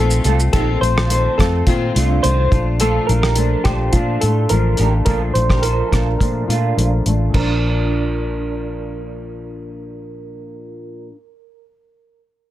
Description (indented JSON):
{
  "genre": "indie pop, bedroom pop",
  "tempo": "106 BPM",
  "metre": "4/4",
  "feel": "straight",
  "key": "Bb major",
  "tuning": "A4 = 437 Hz",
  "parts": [
    { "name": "soft electric-piano-like synth keys", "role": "melody", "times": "0.0-11.1 s", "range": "F4 to C5", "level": "-23 LUFS", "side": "equal", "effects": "lush chorus, low-pass filter, tape echo" },
    { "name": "fingerpicked steel-string acoustic guitar", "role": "accompaniment", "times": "0.0-11.2 s", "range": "Bb2 to F4", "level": "-24 LUFS", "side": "left 4 dB", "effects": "analog chorus, vibrato effect, low-pass filter" },
    { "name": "vintage muted fingered electric bass", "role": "bass", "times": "0.0-11.1 s", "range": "A1 to Bb2", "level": "-18 LUFS", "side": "equal", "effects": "none" },
    { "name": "cloth-damped thuddy drum kit", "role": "drums", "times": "0.1-7.5 s", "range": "crash cymbal, hi-hat, kick drum, rim click, shaker", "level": "-20 LUFS", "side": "equal", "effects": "soft clipping on snare" },
    { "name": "electric guitar through a small old amp", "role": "second line", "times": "0.3-9.0 s", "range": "D4 to C5", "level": "-26 LUFS", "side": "right 6 dB", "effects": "ensemble chorus, tape echo" }
  ],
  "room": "light reverb",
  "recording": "dense, heavily limited modern master",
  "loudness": "-14 LUFS",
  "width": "side -14 dB against mid",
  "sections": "0.0-7.3 A section; 7.3-9.6 B section",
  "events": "filter sweep 0.0-7.3",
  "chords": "0.0 F7/Bb; 2.5 Bbmaj7; 7.3 Bb"
}